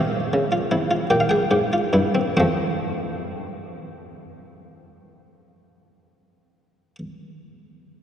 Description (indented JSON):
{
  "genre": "classical, baroque-style 3-part fugue for harpsichord",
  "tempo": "44-56 BPM (dotted quarters)",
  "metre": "12/8",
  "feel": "straight",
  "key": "unclear",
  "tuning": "A4 = 437 Hz",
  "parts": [
    { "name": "buff-stop harpsichord", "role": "solo", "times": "0.0-7.0 s", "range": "F2 to G5", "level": "-20 LUFS", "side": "equal", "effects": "none" }
  ],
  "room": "wet cathedral reverb, RT60 4.8 s",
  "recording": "dark, warm production",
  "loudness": "-19 LUFS",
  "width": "side -9 dB against mid",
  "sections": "0.0-2.4 A section; 2.4-7.7 B section",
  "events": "slowing down 0.0-2.4",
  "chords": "0.0 C; 2.4 F",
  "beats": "1.10 | 2.37 3.72 5.06 6.40"
}